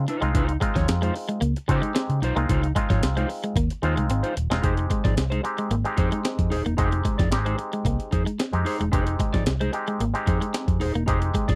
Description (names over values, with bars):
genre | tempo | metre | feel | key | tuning
funk | 112 BPM | 4/4 | straight | F minor | A4 = 440 Hz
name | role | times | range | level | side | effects
overdriven clav | stabs | 0.0-11.5 s | G3 to G4 | -32 LUFS | equal | auto-wah
vintage muted fingered electric bass | bass | 0.0-11.6 s | Eb1 to Db3 | -27 LUFS | equal | none
clean electric guitar | accompaniment | 0.1-11.6 s | Eb4 to D5 | -32 LUFS | equal | none
clean electric guitar | riff | 0.1-11.6 s | F3 to C4 | -32 LUFS | equal | none
breakbeat sampler-style drum kit | drums | 0.1-11.6 s | hi-hat, kick drum, snare drum | -28 LUFS | equal | none
room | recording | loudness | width
little or no reverb | dry, close 1970s-style studio recording | -24 LUFS | mono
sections
0.0-4.6 A section; 4.6-11.6 B section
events
drum fill 3.6-4.6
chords
0.0 Dbmaj9; 4.6 Fm7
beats
| 0.34 0.88 1.42 1.96 | 2.49 3.03 3.56 4.10 | 4.64 5.18 5.71 6.25 | 6.79 7.32 7.86 8.40 | 8.93 9.47 10.01 10.54 | 11.08